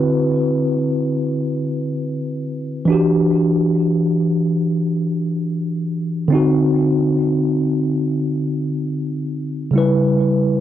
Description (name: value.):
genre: R&B.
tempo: free time.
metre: none.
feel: none.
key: unclear.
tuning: A4 = 440 Hz.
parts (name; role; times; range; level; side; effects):
tine electric piano; solo; 0.0-10.6 s; C#3 to B4; -16 LUFS; equal; medium stereo tremolo, tape echo.
room: light reverb, digital ambience.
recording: dry, gritty hardware recording.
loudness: -16 LUFS.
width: side -11 dB against mid.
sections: 0.0-10.6 A section.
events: none.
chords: 0.0 D13; 2.9 Em9; 6.3 D7b9; 9.7 C#m7b5.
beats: free time.